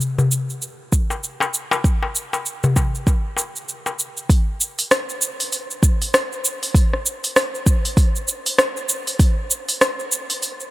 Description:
downtempo; 98 BPM; 4/4; swing 59% on 16ths
deep house drum kit; drums; 0.0-10.7 s; hi-hat, rim click, shaker; -20 LUFS; equal
darbuka; percussion; 0.2-4.0 s; -22 LUFS; left 2 dB
electronic kick drum; drums; 0.9-9.3 s; -16 LUFS; equal
light reverb, digital ambience; -18 LUFS; side -17 dB against mid
0.0-4.3 A section; 4.3-10.7 B section

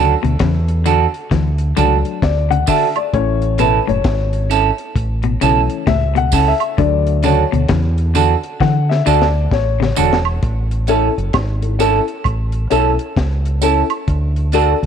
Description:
roots reggae; 66 BPM; 4/4; swing 62% on 16ths; A major; A4 = 440 Hz
semi-hollow electric guitar; accompaniment; 0.0-14.7 s; C#4 to A4; -19 LUFS; right 14 dB
electric guitar at the edge of break-up; arpeggios; 0.0-10.1 s; A2 to E3; -21 LUFS; left 9 dB
dark upright piano; stabs; 0.0-14.7 s; E3 to F#5; -20 LUFS; left 12 dB
deep dub fingered electric bass; bass; 0.0-14.9 s; E1 to D3; -16 LUFS; equal
deep reggae drum kit; drums; 0.2-14.9 s; hi-hat, kick drum, snare drum; -21 LUFS; left 2 dB; vintage 12-bit sampler grit
tambourine and woodblock; percussion; 0.9-14.8 s; -25 LUFS; right 14 dB
light reverb, small room reverb; 1960s-style stereo with parts hard left and right; -13 LUFS; side -8 dB against mid
0.0-10.4 A section; 10.4-14.9 B section
upright piano solo 0.0-10.4; drum fill 8.6-10.4
0.0 D; 3.1 A; 6.8 D; 10.4 A; 14.1 D

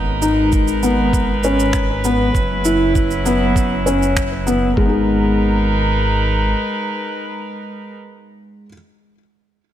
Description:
piano and strings electronica; 99 BPM; 4/4; straight; G# minor; A4 = 438 Hz
dark string quartet; sustained chords; 0.0-8.0 s; F#3 to B4; -21 LUFS; right 1 dB
dark detuned saw bass; bass; 0.0-6.5 s; F#1 to G#1; -20 LUFS; equal; sidechain pumping
felt-muted upright piano; riff; 0.2-8.7 s; G#3 to G#4; -19 LUFS; left 1 dB; ping-pong delay
shaker and finger snaps; drums; 0.2-4.6 s; -27 LUFS; right 5 dB
electronic kick drum; drums; 0.5-4.9 s; -19 LUFS; equal
light reverb, small room ambience; -14 LUFS; side -11 dB against mid
0.0-4.8 A section; 4.8-7.2 B section
drop 0.0-4.8
0.0 G#madd9; 2.3 F#7sus4; 4.8 G#madd9

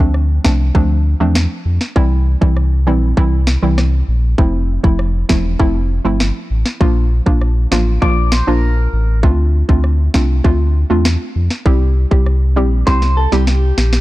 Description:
dancehall; 99 BPM; 4/4; straight; A4 = 439 Hz
hollow square pluck; accompaniment; 0.0-13.5 s; E3 to G4; -19 LUFS; right 2 dB; chorus
sub bass with octave; bass; 0.0-14.0 s; E1 to F2; -14 LUFS; equal
island pop drum kit; drums; 0.1-14.0 s; kick drum, rim click, snare drum; -15 LUFS; equal; vintage 12-bit sampler grit
clean electric guitar; arpeggios; 8.0-9.2, 12.9-14.0 s; G4 to D5; -20 LUFS; left 1 dB
little or no reverb; dark, warm production; -12 LUFS; side -17 dB against mid
0.0-14.0 A section
drum fill 12.9-14.0
0.0 Dm7; 2.0 C; 4.4 Fmaj7; 6.8 Bb; 9.2 Dm7; 11.7 C

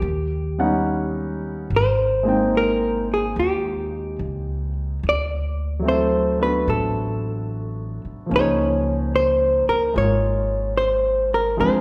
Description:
jazz ballad; 73 BPM; 4/4; swing 67% on 8ths; A4 = 439 Hz
hollow-body jazz guitar; melody; 0.0-11.8 s; G4 to D5; -23 LUFS; equal
warm baby grand piano; accompaniment; 0.0-11.8 s; F3 to G5; -27 LUFS; equal
upright bass; bass; 0.0-11.8 s; Ab1 to Eb2; -28 LUFS; equal
wet recital hall reverb, RT60 1.4 s; recorded in a church or concert hall; -21 LUFS; mono
0.0-1.7 A section; 1.7-11.8 A section
0.0 Eb7alt; 1.7 Abmaj7; 5.0 D13; 8.3 Db6

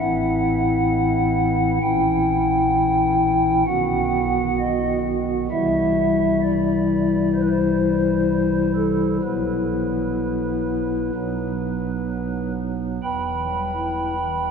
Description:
classical, chorale-style piece for pipe organ; 65 BPM; 4/4; straight; A4 = 437 Hz
pipe organ, stopped flute; solo; 0.0-14.5 s; E1 to B5; -19 LUFS; equal
wet cathedral reverb, RT60 5.5 s; -19 LUFS; side -6 dB against mid
0.0-13.0 A section; 13.0-14.5 B section
0.0 Am; 1.8 A#dim7; 3.7 B; 5.5 C; 9.2 Bsus4; 11.1 B; 13.0 Em

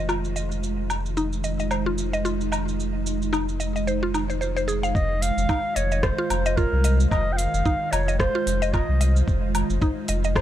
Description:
organic downtempo; 111 BPM; 4/4; swing 57% on 16ths; F minor; A4 = 441 Hz
ethereal airy pad; sustained chords; 0.0-10.4 s; Eb3 to F4; -30 LUFS; right 3 dB; ensemble chorus, built-in reverb, sidechain pumping
mallet-like synth pluck; arpeggios; 0.0-10.4 s; Eb4 to F5; -29 LUFS; equal; chorus, tape echo
warm sub bass; bass; 0.0-10.4 s; F1 to C2; -25 LUFS; equal
organic electronic drum kit; drums; 0.1-10.4 s; hi-hat, rim click, shaker, woodblock; -30 LUFS; equal
breathy clarinet; melody; 5.0-9.2 s; Bb4 to G5; -27 LUFS; equal; digital delay
electronic kick drum; drums; 5.0-10.4 s; -25 LUFS; equal
light reverb; -21 LUFS; side -12 dB against mid
0.0-5.0 A section; 5.0-10.4 B section
0.0 Fm7

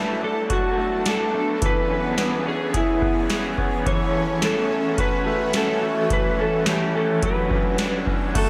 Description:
dream pop; 107 BPM; 4/4; straight; B minor; A4 = 441 Hz
electric slide guitar; melody; 0.0-8.5 s; E4 to C#5; -27 LUFS; equal; delay
raw garage guitar; accompaniment; 0.0-8.5 s; F#2 to A4; -33 LUFS; equal; overdrive, tremolo, lush chorus, slapback echo
shimmering ambient pad; sustained chords; 0.0-8.5 s; E3 to A4; -30 LUFS; equal; chorus, built-in reverb, phaser
semi-hollow electric guitar; arpeggios; 0.0-8.5 s; E3 to G#4; -30 LUFS; equal; lush chorus, delay
booming analog drum machine; drums; 0.5-8.5 s; crash cymbal, hi-hat, kick drum, snare drum; -28 LUFS; equal
wet lush hall reverb, RT60 2.5 s; big arena sound; -22 LUFS; mono
0.0-8.4 A section
0.0 Bm7; 1.6 C#m7; 3.9 F#m7; 6.1 A7; 7.2 Bm9

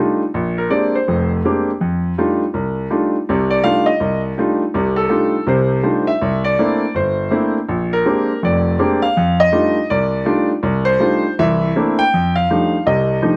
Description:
solo jazz; 163 BPM; 4/4; swing 64% on 8ths, rubato; F mixolydian; A4 = 440 Hz
clear concert grand piano; solo; 0.0-13.4 s; F1 to G5; -17 LUFS; equal
light reverb; close, detailed microphones; -17 LUFS; mono
0.0-12.1 A section; 12.1-13.4 A section
grand piano solo 0.0-13.4
0.3 Bb13; 1.8 F13; 6.2 C13; 7.7 Bb13; 9.2 F13; 11.4 C13; 12.1 F13

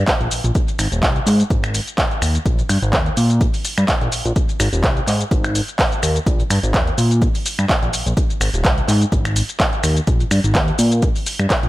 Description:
filtered disco house; 126 BPM; 4/4; swing 55% on 16ths; Ab major; A4 = 441 Hz
fat analog bass; bass; 0.0-11.7 s; Eb1 to Bb2; -18 LUFS; equal; sidechain pumping, low-pass filter
electronic kick drum; drums; 0.1-11.6 s; -19 LUFS; equal
punchy analog drum machine; drums; 0.1-11.7 s; finger snaps, handclaps, hi-hat, shaker; -21 LUFS; equal; sidechain pumping on hats, sidechain pumping on perc
light reverb; echo-heavy mix; -15 LUFS; side -17 dB against mid
0.0-11.7 A section
filter sweep on analog synth bass 0.0-11.7

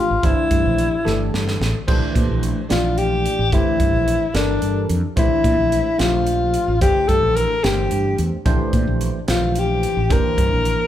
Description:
electric jazz fusion; 73 BPM (dotted quarters); 6/8; straight; C mixolydian; A4 = 441 Hz
breathy alto saxophone; melody; 0.0-10.9 s; D4 to Bb4; -19 LUFS; left 2 dB
bell-like tine electric piano; accompaniment; 0.0-10.8 s; E3 to D5; -25 LUFS; right 2 dB; phaser
mellow fretless electric bass; bass; 0.1-10.8 s; G1 to Bb2; -22 LUFS; equal
crisp fusion drum kit; drums; 0.2-10.8 s; crash cymbal, hi-hat, kick drum, snare drum; -22 LUFS; right 1 dB
moderate large studio reverb, RT60 1.3 s; band playing live in one room; -16 LUFS; side -11 dB against mid
0.0-1.9 A section; 1.9-10.9 A section
drum fill 1.1-1.9
0.2 C9/G; 1.9 Bb69; 3.5 C9/G; 5.2 Bb69; 6.8 C9/G; 8.5 Bb69; 10.1 C9/G

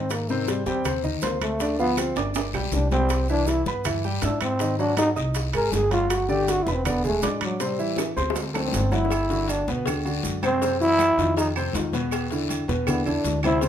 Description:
Afro-Cuban jazz; 160 BPM; 4/4; straight; G major; A4 = 439 Hz
growling trombone; melody; 0.0-13.6 s; Eb3 to Bb4; -24 LUFS; equal
warm baby grand piano; accompaniment; 0.0-13.7 s; B2 to E6; -27 LUFS; equal
upright bass; bass; 0.0-13.7 s; E1 to G#2; -29 LUFS; equal
bongos and cowbell; percussion; 0.1-13.7 s; -34 LUFS; left 7 dB
claves; percussion; 0.1-13.6 s; -38 LUFS; right 10 dB
congas; percussion; 0.1-13.7 s; -33 LUFS; left 4 dB
guiro; percussion; 0.1-13.7 s; -38 LUFS; left 9 dB
maracas; percussion; 0.1-13.7 s; -40 LUFS; right 7 dB
timbales and agogo bells; percussion; 0.1-13.7 s; -34 LUFS; right 7 dB
light reverb; minimal, uncompressed stereo recording; -21 LUFS; side -10 dB against mid
0.0-9.1 A section; 9.1-13.7 A section
trombone solo 0.0-13.7; drum fill 2.2-3.1, 8.0-9.1
0.1 Abmaj7; 1.6 Dm; 2.4 G; 3.1 Cmaj7; 4.6 Ab7; 6.1 Gmaj7; 6.9 E7; 7.6 Am7; 8.4 D7; 9.1 Gmaj7; 10.6 Cadd11; 11.4 F5; 12.1 E5

